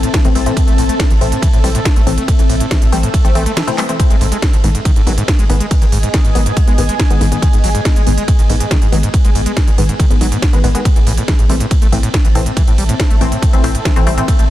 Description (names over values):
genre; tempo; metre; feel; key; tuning
driving peak-time techno; 140 BPM; 4/4; straight; unclear; A4 = 440 Hz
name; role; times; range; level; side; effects
overdriven acid bass; riff; 0.0-14.4 s; G#2 to A3; -21 LUFS; equal; sidechain pumping, ping-pong delay
saturated sub bass; bass; 0.0-14.5 s; G#1 to A1; -17 LUFS; equal; overdrive, sidechain pumping, low-pass filter
techno drum kit; drums; 0.0-14.5 s; handclaps, hi-hat, ride cymbal, snare drum; -22 LUFS; right 1 dB; none
granular cloud pad; texture; 0.0-14.5 s; B3 to A5; -22 LUFS; left 1 dB; built-in reverb, sidechain pumping
electronic kick drum; drums; 0.1-14.4 s; none; -13 LUFS; equal; none
filtered dub chord stab; stabs; 0.2-14.3 s; D#3 to C4; -21 LUFS; left 3 dB; chorus, sidechain pumping, ping-pong delay
room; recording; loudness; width
little or no reverb; dense, heavily limited modern master; -10 LUFS; side -14 dB against mid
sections
0.0-14.5 A section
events
break 3.6-4.0; drum fill 3.8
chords
0.0 Am; 4.0 G#m; 10.9 Am